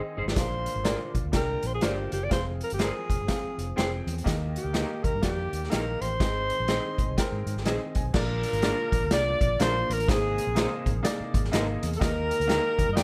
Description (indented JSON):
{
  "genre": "uptempo 1960s-style soul",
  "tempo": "124 BPM",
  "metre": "4/4",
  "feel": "swing 61% on 8ths",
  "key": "Bb mixolydian",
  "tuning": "A4 = 439 Hz",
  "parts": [
    { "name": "mellow alto saxophone", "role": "melody", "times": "0.0-13.0 s", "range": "G4 to Eb5", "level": "-32 LUFS", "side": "equal", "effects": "slapback echo" },
    { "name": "clear upright piano", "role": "accompaniment", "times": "0.0-13.0 s", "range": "Ab2 to Ab5", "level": "-37 LUFS", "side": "equal", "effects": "none" },
    { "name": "mellow tonewheel organ", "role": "sustained chords", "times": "0.0-13.0 s", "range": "C3 to Ab4", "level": "-43 LUFS", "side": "equal", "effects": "none" },
    { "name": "electric guitar through a small old amp", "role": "stabs", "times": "0.2-12.6 s", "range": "C4 to D5", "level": "-39 LUFS", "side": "equal", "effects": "spring reverb" },
    { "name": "vintage muted fingered electric bass", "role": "bass", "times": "0.2-13.0 s", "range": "F1 to Ab2", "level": "-34 LUFS", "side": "equal", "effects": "none" },
    { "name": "vintage drum kit", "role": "drums", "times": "0.3-13.0 s", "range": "crash cymbal, hi-hat, kick drum, snare drum", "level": "-31 LUFS", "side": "equal", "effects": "none" },
    { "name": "bright trumpet", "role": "second line", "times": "8.1-13.0 s", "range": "Ab4 to Eb5", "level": "-40 LUFS", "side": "equal", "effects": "none" }
  ],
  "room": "light reverb",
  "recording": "none",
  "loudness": "-27 LUFS",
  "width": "mono",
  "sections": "0.0-8.1 A section; 8.1-13.0 B section",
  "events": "drum fill 0.0-0.4; upright piano fill 6.7-8.1",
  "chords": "0.4 Bb; 2.3 Fm; 4.3 Eb; 6.2 Ab; 8.1 Bb; 10.1 Abadd9; 12.0 Eb"
}